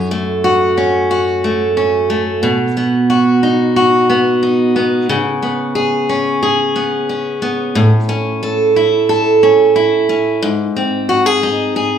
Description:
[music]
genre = pop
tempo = 90 BPM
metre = 4/4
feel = straight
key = C# minor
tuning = A4 = 439 Hz
[part]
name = picked steel-string acoustic guitar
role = solo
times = 0.0-12.0 s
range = F#2 to A4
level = -12 LUFS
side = right 1 dB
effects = none
[sound]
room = wet large studio reverb, RT60 0.7 s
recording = band playing live in one room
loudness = -12 LUFS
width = side -8 dB against mid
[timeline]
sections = 0.0-12.0 A section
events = none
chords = 0.0 F#m; 2.4 B; 5.1 C#5; 7.8 A; 10.4 G#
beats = 0.44 1.10 1.77 | 2.44 3.10 3.77 4.43 | 5.10 5.76 6.43 7.10 | 7.76 8.43 9.09 9.76 | 10.42 11.09 11.75

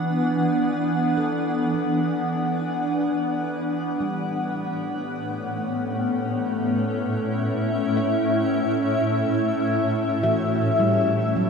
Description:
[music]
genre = ambient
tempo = 53 BPM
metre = 3/4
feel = straight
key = unclear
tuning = A4 = 440 Hz
[part]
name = granular cloud pad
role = sustained chords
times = 0.0-11.5 s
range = A2 to F#5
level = -21 LUFS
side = equal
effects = built-in reverb
[part]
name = handpan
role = arpeggios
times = 0.0-11.5 s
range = E3 to E5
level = -32 LUFS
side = left 2 dB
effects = tape echo
[sound]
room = wet shimmer reverb, RT60 7.9 s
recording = none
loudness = -21 LUFS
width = side -5 dB against mid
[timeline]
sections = 0.0-11.5 A section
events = fade-in on handpan 0.0-11.5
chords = 0.0 E5; 3.4 A; 10.2 Em7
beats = | 0.04 1.18 2.31 | 3.44 4.57 5.70 | 6.84 7.97 9.10 | 10.23 11.36

